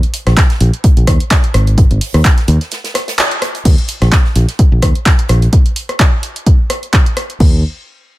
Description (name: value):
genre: piano house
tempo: 128 BPM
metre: 4/4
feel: swing 55% on 16ths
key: unclear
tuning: A4 = 439 Hz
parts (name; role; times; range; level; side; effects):
- punchy analog drum machine; drums; 0.0-7.5 s; crash cymbal, handclaps, hi-hat, rim click; -17 LUFS; equal; none
- unplugged drum kit; drums; 0.1-5.5 s; hi-hat, snare drum; -27 LUFS; right 3 dB; high-pass filter on hats, high-pass filter on snare, high-pass filter on room
- fingered electric bass; bass; 0.3-7.6 s; Ab1 to Eb2; -11 LUFS; equal; sidechain pumping
- electronic kick drum; drums; 0.4-7.5 s; none; -10 LUFS; equal; none
room: little or no reverb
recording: none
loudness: -10 LUFS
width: side -18 dB against mid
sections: 0.0-3.7 A section; 3.7-7.4 B section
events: drop 0.0-3.7; break 2.7-3.7; band accent 3.2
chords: none